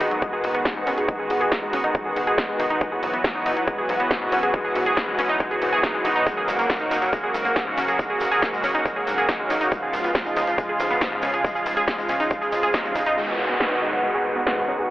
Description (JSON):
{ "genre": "uplifting trance", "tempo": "139 BPM", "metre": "4/4", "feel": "straight", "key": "G# minor", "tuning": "A4 = 439 Hz", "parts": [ { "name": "lush unison pad", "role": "sustained chords", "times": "0.0-14.9 s", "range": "C#3 to F#4", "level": "-23 LUFS", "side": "equal", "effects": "chorus, sidechain pumping" }, { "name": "analog pluck", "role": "arpeggios", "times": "0.0-14.8 s", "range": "G#2 to G#4", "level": "-25 LUFS", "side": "equal", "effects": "chorus, vintage 12-bit sampler grit, sidechain pumping, tape echo" }, { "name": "tight sequencer bass", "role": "bass", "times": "0.0-14.9 s", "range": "E1 to C#2", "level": "-34 LUFS", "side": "equal", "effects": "tube saturation, sidechain pumping" }, { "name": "punchy analog drum machine", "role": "drums", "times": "0.0-14.6 s", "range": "hi-hat, snare drum", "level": "-28 LUFS", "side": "equal", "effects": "overdrive, low-pass filter on hats, low-pass filter on snare, low-pass filter on cymbals" }, { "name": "electronic kick drum", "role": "drums", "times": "0.2-12.8 s", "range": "none", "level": "-26 LUFS", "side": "equal", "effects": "overdrive" }, { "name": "tube shaker", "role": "percussion", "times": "6.3-13.1 s", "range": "none", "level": "-42 LUFS", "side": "right 1 dB", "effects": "none" }, { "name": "downlifter", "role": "sound effects", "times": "13.2-14.9 s", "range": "none", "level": "-26 LUFS", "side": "equal", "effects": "none" } ], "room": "wet plate reverb, RT60 1.1 s, digital ambience", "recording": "dreamy mix soaked in reverb, telephone sound", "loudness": "-20 LUFS", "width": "side -16 dB against mid", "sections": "0.0-13.2 A section; 13.2-14.9 B section", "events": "band accent 12.7; filter sweep on synth pluck 13.2-14.9", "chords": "0.0 G#m7; 2.8 Esus2; 6.3 F#; 9.7 C#; 13.2 G#m7" }